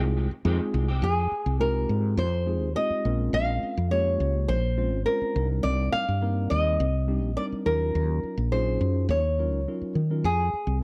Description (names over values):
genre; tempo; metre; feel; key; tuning
jazz; 104 BPM; 4/4; straight; F minor; A4 = 440 Hz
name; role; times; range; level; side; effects
tine electric piano; accompaniment; 0.0-10.2 s; Gb3 to C5; -34 LUFS; equal; none
clean electric guitar; stabs; 0.0-1.0 s; Eb3 to G4; -41 LUFS; equal; ensemble chorus, plate reverb, tape echo
woody fretless electric bass; bass; 0.0-10.8 s; Ab1 to Eb3; -28 LUFS; equal; none
nylon-string guitar; melody; 1.0-10.8 s; Ab4 to F5; -30 LUFS; equal; plate reverb
room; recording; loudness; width
moderate large studio reverb, RT60 0.8 s; dark, warm production; -26 LUFS; mono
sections
0.0-1.0 A section; 1.0-10.8 B section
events
none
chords
0.0 Fm9; 3.0 Bbm9; 5.3 Cm9; 7.7 Ebm9; 10.2 Fm